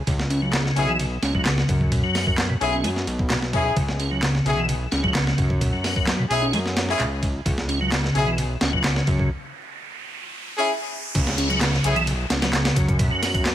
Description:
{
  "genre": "breakbeat, breaks",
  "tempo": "130 BPM",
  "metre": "4/4",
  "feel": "straight",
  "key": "C# minor",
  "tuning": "A4 = 440 Hz",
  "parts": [
    { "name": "fat analog bass", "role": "bass", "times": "0.0-13.5 s", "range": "B1 to F#2", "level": "-26 LUFS", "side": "equal", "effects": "none" },
    { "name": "tonewheel organ", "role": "riff", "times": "0.1-13.4 s", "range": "B2 to C#4", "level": "-23 LUFS", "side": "equal", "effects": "chorus vibrato, slow rotary speaker, ping-pong delay" },
    { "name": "breakbeat sampler-style drum kit", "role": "drums", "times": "0.1-13.5 s", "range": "hi-hat, kick drum, ride cymbal, snare drum", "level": "-25 LUFS", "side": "equal", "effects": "studio reverb" },
    { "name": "punchy analog drum machine", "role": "drums", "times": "0.5-13.5 s", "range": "handclaps, hi-hat", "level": "-32 LUFS", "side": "equal", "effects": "overdrive, studio reverb" },
    { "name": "bright horn section", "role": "stabs", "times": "0.8-12.0 s", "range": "C#4 to G#4", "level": "-25 LUFS", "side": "left 2 dB", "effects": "ping-pong delay" },
    { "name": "riser and downlifter", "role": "sound effects", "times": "9.1-13.5 s", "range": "none", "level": "-32 LUFS", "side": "right 2 dB", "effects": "none" }
  ],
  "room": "light reverb, digital ambience",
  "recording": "vinyl crackle",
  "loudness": "-20 LUFS",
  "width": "side -11 dB against mid",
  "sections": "0.0-11.1 A section; 11.1-13.5 B section",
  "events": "riser 9.1-11.1; break 9.3-11.1; drop 11.1-13.5",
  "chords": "0.0 C#m",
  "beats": "| 0.07 0.53 0.99 1.46 | 1.92 2.38 2.84 3.30 | 3.76 4.23 4.69 5.15 | 5.61 6.07 6.53 7.00 | 7.46 7.92 8.38 8.84 | 9.30 9.76 10.23 10.69 | 11.15 11.61 12.07 12.53 | 12.99 13.46"
}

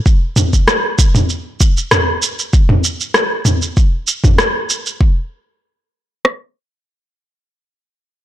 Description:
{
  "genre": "sunset chillout",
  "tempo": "97 BPM",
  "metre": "4/4",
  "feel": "swing 53% on 16ths",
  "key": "none",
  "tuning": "none",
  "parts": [
    { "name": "deep house drum kit", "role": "drums", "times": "0.1-6.4 s", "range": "kick drum, rim click", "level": "-12 LUFS", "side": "equal", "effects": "soft clipping on snare" },
    { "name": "deep house drum kit", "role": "drums", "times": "0.1-5.0 s", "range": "rim click, shaker, toms", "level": "-14 LUFS", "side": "equal", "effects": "soft clipping on snare" }
  ],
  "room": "light reverb",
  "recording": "blown-out, overdriven recording, overdrive",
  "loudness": "-12 LUFS",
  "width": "side -13 dB against mid",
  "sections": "0.0-5.0 A section; 5.0-7.5 B section",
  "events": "none",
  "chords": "none",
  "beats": "| 0.05 0.67 1.29 1.91 | 2.53 3.15 3.77 4.38 | 5.00 5.62 6.24"
}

